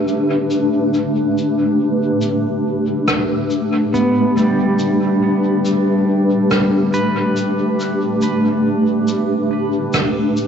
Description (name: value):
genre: ambient dub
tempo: 70 BPM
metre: 4/4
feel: swing 60% on 16ths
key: unclear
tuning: A4 = 441 Hz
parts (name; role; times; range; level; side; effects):
- granular cloud pad; sustained chords; 0.0-10.5 s; A3 to B4; -16 LUFS; equal; built-in reverb
- shaker and rim click; drums; 0.1-10.5 s; none; -24 LUFS; equal; low-pass filter on snare, low-pass filter on perc, low-pass filter on room, dub echo
- pedal steel guitar; arpeggios; 3.9-10.3 s; G3 to B4; -19 LUFS; equal; tape echo
room: wet plate reverb, RT60 3.8 s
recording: dreamy mix soaked in reverb, nothing above 7.9 kHz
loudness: -14 LUFS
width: side -7 dB against mid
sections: 0.0-10.5 A section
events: filter sweep on ambient pad 0.0-10.5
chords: 0.0 Gadd9